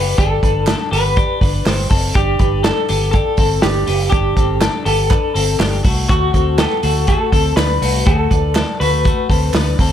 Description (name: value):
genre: jangly indie pop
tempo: 122 BPM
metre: 4/4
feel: straight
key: G major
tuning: A4 = 443 Hz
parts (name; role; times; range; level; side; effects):
- electric guitar through a small old amp; melody; 0.0-9.7 s; F#4 to B4; -19 LUFS; left 1 dB; tremolo, plate reverb
- twelve-string electric guitar; arpeggios; 0.0-9.9 s; A3 to C5; -22 LUFS; left 5 dB; plate reverb
- vintage muted fingered electric bass; bass; 0.0-9.9 s; F#1 to D2; -19 LUFS; equal; none
- vintage drum kit; drums; 0.2-9.9 s; hi-hat, kick drum, snare drum; -17 LUFS; right 1 dB; none
- group handclap; percussion; 0.7-9.7 s; none; -30 LUFS; right 7 dB; none
room: light reverb, small room ambience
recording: none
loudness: -13 LUFS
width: side -10 dB against mid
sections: 0.0-9.9 A section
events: none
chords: 0.0 Gsus2; 6.1 D6